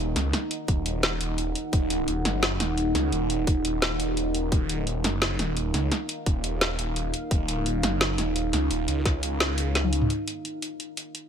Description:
dark technical drum and bass; 172 BPM; 4/4; straight; Eb minor; A4 = 439 Hz
deep dark ambient pad; sustained chords; 0.0-11.3 s; Eb4 to Gb5; -30 LUFS; right 1 dB; chorus, built-in reverb, sidechain pumping
phased detuned saw bass; bass; 0.0-10.1 s; Eb1 to Db2; -28 LUFS; equal; phaser, overdrive, sidechain pumping
drum and bass drum kit; drums; 0.2-11.2 s; hi-hat, snare drum, toms; -27 LUFS; equal
electronic kick drum; drums; 0.7-9.1 s; -24 LUFS; equal
moderate lush hall reverb, RT60 1.6 s; -24 LUFS; side -8 dB against mid
0.0-10.1 A section; 10.1-11.3 B section
kick drops out 9.8-10.1; drum fill 9.8-10.1; filter sweep on ambient pad 10.1-11.3
0.0 Ebm; 10.1 Eb5
| 0.33 0.68 1.03 1.38 | 1.73 2.08 2.43 2.78 | 3.12 3.47 3.82 4.17 | 4.52 4.87 5.22 5.57 | 5.92 6.26 6.61 6.96 | 7.31 7.66 8.01 8.36 | 8.71 9.05 9.40 9.75 | 10.10 10.45 10.80 11.15

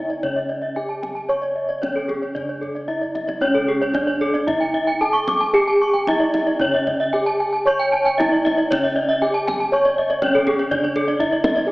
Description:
Balinese gamelan; 113-127 BPM; 4/4; straight; C# pelog; A4 = 440 Hz
gamelan-type bronze metallophone; melody; 0.0-11.7 s; C#4 to C#5; -22 LUFS; equal
gamelan-type bronze metallophone; arpeggios; 0.0-11.7 s; G#4-45c to D6; -23 LUFS; left 1 dB
gamelan-type bossed gongs; bass; 0.0-11.7 s; C#2 to C#5; -27 LUFS; equal
gamelan-type bronze metallophone; arpeggios; 0.1-11.7 s; A4-40c to C#6; -24 LUFS; right 1 dB
kendang; percussion; 0.1-11.6 s; -30 LUFS; equal
moderate concert hall reverb, RT60 2.1 s; AM radio sound; -17 LUFS; side -21 dB against mid
0.0-11.7 A section
drum fill 3.0-3.4
0.23 0.76 | 1.29 1.82 2.36 2.89 | 3.42 3.95 4.48 5.01 | 5.54 6.07 6.60 7.13 | 7.67 8.19 8.71 9.22 | 9.73 10.22 10.72 11.20 | 11.68

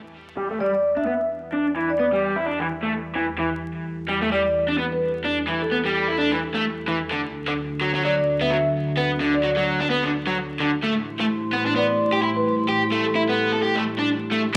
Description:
breakbeat; 129 BPM; 4/4; swing 58% on 16ths; E minor; A4 = 440 Hz
dark analog pad; sustained chords; 0.0-14.5 s; D3 to C6; -30 LUFS; equal; chorus, sidechain pumping
raw garage guitar; riff; 0.4-14.6 s; D3 to A4; -25 LUFS; equal; overdrive, low-pass filter, digital delay
vibraphone with soft mallets; melody; 0.6-13.7 s; A4 to E5; -27 LUFS; equal; AM radio sound
moderate plate reverb, RT60 1.1 s, small room ambience; dense, heavily limited modern master, vinyl crackle; -23 LUFS; mono
0.0-14.6 A section
filter sweep on overdriven electric guitar 0.0-14.6
0.0 Em; 7.1 D; 10.8 Am7
0.14 0.60 1.06 | 1.53 2.00 2.46 2.93 | 3.39 3.86 4.32 4.79 | 5.25 5.72 6.18 6.65 | 7.11 7.58 8.04 8.51 | 8.97 9.44 9.90 10.37 | 10.83 11.30 11.76 12.23 | 12.69 13.16 13.62 14.09 | 14.55

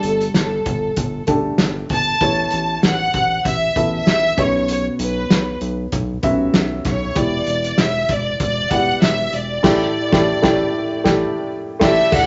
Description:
piano-driven pop; 97 BPM; 4/4; swing 56% on 16ths; A4 = 439 Hz
warm studio violin section; melody; 0.0-12.3 s; A4 to A5; -22 LUFS; equal
dark upright piano; accompaniment; 0.0-12.3 s; G2 to E5; -23 LUFS; equal
round analog bass; bass; 0.0-12.3 s; E1 to D2; -28 LUFS; equal
loose indie drum kit; drums; 0.0-12.3 s; crash cymbal, hi-hat, kick drum, snare drum; -22 LUFS; equal
wet studio reverb, RT60 0.7 s; nothing above 7.7 kHz; -18 LUFS; mono
0.0-12.1 A section
band accent 9.6-12.1
0.0 Gsus2; 2.2 Aadd9; 4.4 Bsus2; 7.2 Em7; 9.6 A7sus4
0.35 0.97 1.59 | 2.21 2.83 3.45 4.07 | 4.69 5.31 5.93 6.55 | 7.17 7.79 8.41 9.03 | 9.65 10.27 10.89 11.51 | 12.12

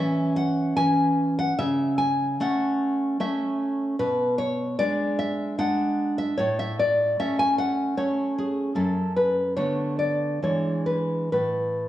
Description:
romantic piece for solo classical guitar; 75 BPM; 3/4; rubato; A major; A4 = 440 Hz
nylon-string guitar; solo; 0.0-11.9 s; F#2 to G#5; -22 LUFS; equal
wet recital hall reverb, RT60 1.4 s; studio reverb; -22 LUFS; side -13 dB against mid
0.0-11.9 A section
0.0 A (rootless); 1.6 A/C#; 4.0 Bm69; 6.4 A; 8.7 F#m; 9.6 Bm7/D; 10.4 E7; 11.3 N.C.
0.75 | 1.56 2.38 3.19 | 3.98 4.78 5.58 | 6.38 7.17 7.96 | 8.75 9.56 10.41 | 11.32

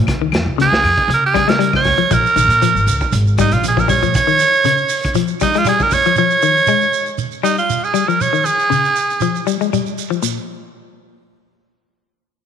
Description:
afrobeat; 118 BPM; 4/4; straight; A4 = 437 Hz
semi-hollow electric guitar; arpeggios; 0.0-10.4 s; Bb2 to Ab3; -20 LUFS; left 11 dB
upright bass; bass; 0.0-4.1 s; Ab1 to Db3; -18 LUFS; equal
crunchy breakbeat drum kit; drums; 0.1-6.2 s; hi-hat, kick drum, snare drum; -22 LUFS; equal
claves; percussion; 0.1-1.9 s; -29 LUFS; left 15 dB
raspy tenor saxophone; melody; 0.6-9.4 s; Eb4 to Db5; -14 LUFS; right 4 dB
shekere; percussion; 2.1-10.4 s; -25 LUFS; right 9 dB
moderate echo chamber reverb, RT60 2.2 s; 1960s-style stereo with parts hard left and right; -13 LUFS; side -8 dB against mid
0.0-10.2 A section; 10.2-12.5 B section
tenor saxophone solo 0.0-10.2
0.1 Db; 2.1 Bb7(no3); 4.1 Db; 6.2 Eb9; 8.2 Db; 10.2 N.C.
| 0.07 0.58 1.09 1.59 | 2.10 2.61 3.12 3.63 | 4.14 4.64 5.15 5.66 | 6.17 6.68 7.18 7.69 | 8.20 8.71 9.21 9.72 | 10.23

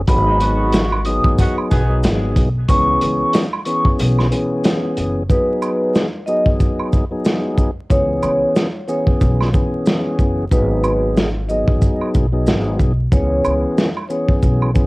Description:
hip hop, boom-bap hip-hop; 92 BPM; 4/4; swing 59% on 16ths; G# minor; A4 = 439 Hz
upright bass; bass; 0.0-14.7 s; F#1 to C#2; -20 LUFS; equal; tube saturation
vibraphone with soft mallets; melody; 0.1-14.3 s; B4 to D#6; -20 LUFS; equal; high-pass filter, low-pass filter, cassette tape, analog delay
tonewheel organ; accompaniment; 0.1-14.9 s; E3 to G#4; -21 LUFS; left 1 dB; slow rotary speaker, high-pass filter, low-pass filter, cassette tape
crunchy breakbeat drum kit; drums; 0.1-14.9 s; hi-hat, kick drum, snare drum; -17 LUFS; equal; cassette tape
maracas and woodblock; percussion; 0.1-14.9 s; -29 LUFS; right 4 dB
mellow horn section; stabs; 0.3-2.0 s; B2 to G#4; -26 LUFS; right 1 dB; high-pass filter, low-pass filter, cassette tape, analog delay
little or no reverb; home recording on cassette, vinyl crackle; -14 LUFS; side -22 dB against mid
0.0-5.3 A section; 5.3-14.9 B section
kick muted 4.0-5.3; hi-hats muted 5.3-14.9
0.1 G#m7; 2.7 C#m7; 5.3 G#m7; 7.9 C#m7; 10.5 G#m7; 13.1 C#m7
| 0.08 0.73 1.38 2.04 | 2.69 3.34 3.99 4.64 | 5.30 5.95 6.60 7.25 | 7.90 8.56 9.21 9.86 | 10.51 11.16 11.82 12.47 | 13.12 13.77 14.43

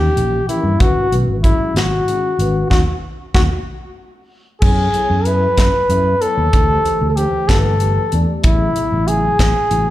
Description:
electric jazz fusion; 63 BPM (dotted quarters); 6/8; straight; F# minor from 4.6 s; A4 = 439 Hz
trumpet with bucket mute; melody; 0.0-9.9 s; E4 to B4; -18 LUFS; left 1 dB; slapback echo, analog delay
tine electric piano; accompaniment; 0.0-9.9 s; C#3 to E5; -25 LUFS; left 1 dB; medium stereo tremolo, ensemble chorus, slapback echo
fingered electric bass; bass; 0.0-9.9 s; G1 to G2; -18 LUFS; equal
crisp fusion drum kit; drums; 0.2-9.9 s; crash cymbal, hi-hat, kick drum, snare drum; -17 LUFS; equal
small room ambience; live gig heard through the venue's PA, club reverb; -13 LUFS; side -14 dB against mid
0.0-4.6 A section; 4.6-9.9 B section
band accent 2.7-4.6; drum fill 3.7-4.6
0.0 D#7b9; 0.8 G#m7; 2.7 D#7(b5, no3); 3.7 N.C.; 4.6 F#m9; 6.5 D5; 7.5 Gadd9; 8.4 Amaj9
| 0.80 1.75 | 2.71 3.66 | 4.62 5.57 | 6.53 7.48 | 8.44 9.39

